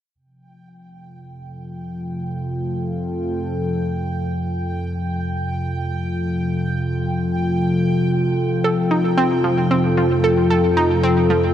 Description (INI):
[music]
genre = ambient, sequencer-driven space music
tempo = free time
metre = none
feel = none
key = unclear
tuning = A4 = 440 Hz
[part]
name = round analog bass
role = bass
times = 0.1-11.5 s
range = F2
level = -29 LUFS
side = right 1 dB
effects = none
[part]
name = sweeping resonant pad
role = sustained chords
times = 0.2-11.5 s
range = C3 to A4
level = -20 LUFS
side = left 1 dB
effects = chorus
[part]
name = bubbling stepped-filter texture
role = texture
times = 1.0-11.5 s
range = G5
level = -32 LUFS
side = right 2 dB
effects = chorus, built-in reverb
[part]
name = analog pluck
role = riff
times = 8.6-11.4 s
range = F3 to A4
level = -20 LUFS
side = right 1 dB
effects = chorus, tape echo
[sound]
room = wet cathedral reverb, RT60 6.3 s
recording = in a vast, echoing space, cassette tape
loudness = -18 LUFS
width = side -10 dB against mid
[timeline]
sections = 0.1-11.5 A section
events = fade-in on analog synth bass 0.1-11.5; fade-in on synth texture 0.1-11.5; filter sweep on analog synth pad 0.1-11.5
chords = 0.1 F